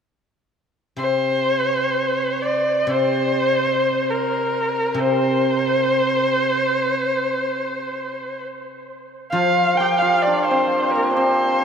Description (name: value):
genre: chinese traditional, Chinese chamber ensemble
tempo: free time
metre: none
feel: none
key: C shang mode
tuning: A4 = 445 Hz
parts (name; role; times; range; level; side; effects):
- warm erhu; melody; 1.0-11.6 s; Bb4 to G5; -20 LUFS; equal; none
- guzheng; accompaniment; 1.0-11.6 s; C3 to F3; -24 LUFS; equal; none
- hammered dulcimer; second line; 9.3-11.6 s; Bb3 to Bb4; -20 LUFS; right 1 dB; none
room: wet cathedral reverb, RT60 5.7 s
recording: in a vast, echoing space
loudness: -17 LUFS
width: side -7 dB against mid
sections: 0.4-9.3 A section; 9.3-11.6 B section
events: none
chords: none